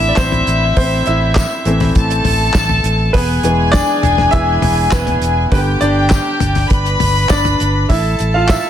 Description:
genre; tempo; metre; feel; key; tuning
piano-driven pop; 101 BPM; 4/4; straight; A minor; A4 = 439 Hz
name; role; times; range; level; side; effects
warm studio violin section; second line; 0.0-8.7 s; E4 to B5; -17 LUFS; left 2 dB; ping-pong delay
clear baby grand piano; accompaniment; 0.0-8.7 s; D3 to F5; -18 LUFS; right 1 dB; none
fingered electric bass; bass; 0.0-8.6 s; E1 to A1; -17 LUFS; equal; none
damped 70s drum kit; drums; 0.0-8.6 s; handclaps, hi-hat, kick drum, snare drum, toms; -17 LUFS; equal; none
tambourine; percussion; 0.2-8.6 s; none; -30 LUFS; left 11 dB; none
room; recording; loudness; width
moderate large studio reverb, RT60 0.8 s, small room ambience; dense, heavily limited modern master; -12 LUFS; side -10 dB against mid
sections
0.0-8.7 A section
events
grand piano solo 0.0-8.7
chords
0.0 Am; 3.1 E; 5.5 G; 7.9 A5

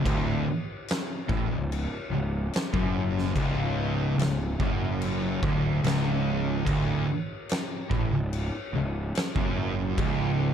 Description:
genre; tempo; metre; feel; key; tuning
stoner and doom metal; 72 BPM; 4/4; straight; unclear; A4 = 440 Hz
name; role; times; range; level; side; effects
overdriven semi-hollow guitar; riff; 0.0-10.5 s; C#2 to A2; -32 LUFS; equal; none
thick fuzz guitar; riff; 0.0-10.5 s; C#2 to A2; -31 LUFS; left 7 dB; distortion
thick fuzz guitar; riff; 0.0-10.5 s; C#2 to A2; -31 LUFS; right 9 dB; distortion
fuzz picked electric bass; bass; 0.1-10.5 s; C#1 to A1; -32 LUFS; equal; overdrive, tube saturation
oversized low-tuned drum kit; drums; 0.1-10.2 s; crash cymbal, kick drum, snare drum; -30 LUFS; equal; none
room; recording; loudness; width
light reverb, small room ambience; dark, warm production; -25 LUFS; side -8 dB against mid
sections
0.0-10.5 A section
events
none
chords
none

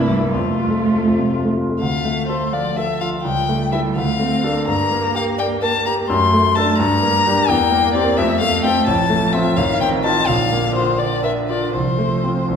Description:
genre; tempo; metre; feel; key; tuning
quick classical-period movement for piano trio; 80-87 BPM (dotted quarters); 6/8; straight; D minor, F major from 7.5 s; A4 = 442 Hz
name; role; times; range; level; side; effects
warm violin; melody; 0.0-12.5 s; E4 to C6; -19 LUFS; left 5 dB; none
rich cello; second line; 0.0-12.6 s; D3 to C4; -22 LUFS; right 4 dB; none
clear concert grand piano; accompaniment; 0.0-12.6 s; A1 to F5; -19 LUFS; left 1 dB; none
room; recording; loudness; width
wet recital hall reverb, RT60 1.6 s; recorded in a church or concert hall; -15 LUFS; side -7 dB against mid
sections
0.0-1.8 A section; 1.8-12.6 B section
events
none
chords
0.3 F; 1.8 Dm; 3.3 A7/C#; 4.0 Dm; 4.7 Gm; 6.1 D7/F#; 6.8 Gm; 7.5 C7/E; 8.2 F; 8.9 F/A; 9.6 F7/A; 10.3 Bb; 11.7 F/C

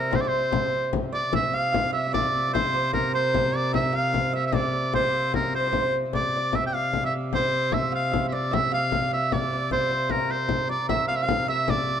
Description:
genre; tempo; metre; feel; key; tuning
medieval dance; 100 BPM (dotted quarters); 6/8; straight; C mixolydian; A4 = 438 Hz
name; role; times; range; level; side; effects
bright shawm; melody; 0.0-12.0 s; Bb4 to G5; -25 LUFS; equal; none
hammered dulcimer; second line; 0.0-12.0 s; Bb4 to F5; -29 LUFS; right 3 dB; none
rich viola da gamba; drone; 0.0-12.0 s; C3; -31 LUFS; equal; none
frame drum; percussion; 0.1-12.0 s; none; -29 LUFS; left 6 dB; none
room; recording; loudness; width
moderate spring reverb, RT60 1.9 s; dark, warm production; -22 LUFS; side -8 dB against mid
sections
0.0-1.3 A section; 1.3-10.9 B section; 10.9-12.0 B section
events
none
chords
none

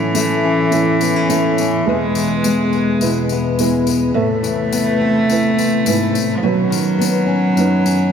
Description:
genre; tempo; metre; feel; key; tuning
acoustic folk duo or small band; 105 BPM; 4/4; straight; unclear; A4 = 442 Hz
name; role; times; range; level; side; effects
warm cello; second line; 0.0-8.1 s; E3 to A3; -17 LUFS; equal; none
fingerpicked steel-string acoustic guitar; accompaniment; 0.0-8.1 s; E2 to C#4; -20 LUFS; left 5 dB; none
mellow tonewheel organ; sustained chords; 0.0-8.1 s; E2 to B4; -26 LUFS; left 2 dB; slow rotary speaker
felt-muted upright piano; arpeggios; 0.0-8.1 s; F#3 to B4; -20 LUFS; right 4 dB; none
tambourine; percussion; 0.1-8.0 s; none; -28 LUFS; left 9 dB; none
room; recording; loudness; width
wet cathedral reverb, RT60 5.7 s; in a vast, echoing space; -14 LUFS; side -7 dB against mid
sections
0.0-8.1 A section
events
none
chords
0.0 A; 1.9 E; 4.1 Amadd9; 6.4 Badd9

